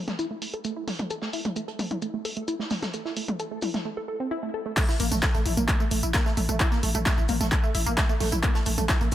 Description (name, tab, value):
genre	driving peak-time techno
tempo	131 BPM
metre	4/4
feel	straight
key	unclear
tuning	A4 = 440 Hz
part	tight sequenced synth	riff	0.1-9.1 s	A3 to A4	-30 LUFS	right 2 dB	chorus, tube saturation, sidechain pumping, dub echo
part	loose indie drum kit	drums	0.1-9.1 s	hi-hat, shaker, snare drum	-39 LUFS	equal	high-pass filter on hats, low-pass filter on hats, high-pass filter on snare, low-pass filter on snare, high-pass filter on perc, low-pass filter on perc, high-pass filter on room, low-pass filter on room
part	punchy analog drum machine	drums	0.1-9.1 s	crash cymbal, handclaps, hi-hat, tambourine, toms	-29 LUFS	left 1 dB	overdrive, sidechain pumping on hats, low-pass filter on hats, sidechain pumping on toms, low-pass filter on toms, low-pass filter on snare, sidechain pumping on cymbals, low-pass filter on cymbals, sidechain pumping on perc, low-pass filter on perc
part	electronic kick drum	drums	4.8-9.0 s	none	-24 LUFS	equal	overdrive
part	growling 808-style bass	bass	5.0-9.1 s	A1	-28 LUFS	equal	sidechain pumping, low-pass filter
room	light reverb, studio reverb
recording	none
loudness	-24 LUFS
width	side -12 dB against mid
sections	0.0-4.8 A section; 4.8-9.1 B section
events	filter sweep on synth arpeggio sound 0.0-4.8; drop 4.8-9.1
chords	0.0 A5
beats	0.19 0.65 | 1.10 1.56 2.02 2.48 | 2.94 3.40 3.85 4.31 | 4.77 5.23 5.68 6.14 | 6.60 7.06 7.52 7.97 | 8.43 8.89